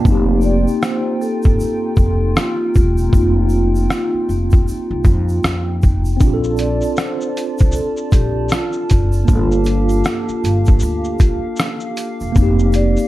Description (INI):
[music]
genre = lo-fi hip hop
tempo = 78 BPM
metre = 4/4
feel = swing 61% on 16ths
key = unclear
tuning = A4 = 440 Hz
[part]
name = mellow tine electric piano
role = accompaniment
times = 0.0-13.1 s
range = Bb3 to A4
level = -21 LUFS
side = equal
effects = medium stereo tremolo, low-pass filter
[part]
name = warbly tape-like pad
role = sustained chords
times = 0.0-13.1 s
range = Eb4 to A5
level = -28 LUFS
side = equal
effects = chorus, built-in reverb, low-pass filter
[part]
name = upright bass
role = bass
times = 0.0-12.9 s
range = E1 to F2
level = -18 LUFS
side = equal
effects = none
[part]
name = trip hop sampler-style drum kit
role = drums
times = 0.1-13.1 s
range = hi-hat, kick drum, rim click, shaker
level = -15 LUFS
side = equal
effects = vintage 12-bit sampler grit
[part]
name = egg shaker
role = percussion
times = 0.1-13.1 s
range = none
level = -41 LUFS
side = right 3 dB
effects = none
[part]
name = vibraphone with soft mallets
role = melody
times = 0.4-13.1 s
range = F4 to D5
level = -23 LUFS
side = equal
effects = low-pass filter
[sound]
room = light reverb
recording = dark, warm production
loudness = -14 LUFS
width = side -16 dB against mid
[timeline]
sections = 0.0-13.1 A section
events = break 0.0-6.2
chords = 0.1 F9sus4; 6.2 Bbmaj7; 9.3 Gm9; 12.4 F9sus4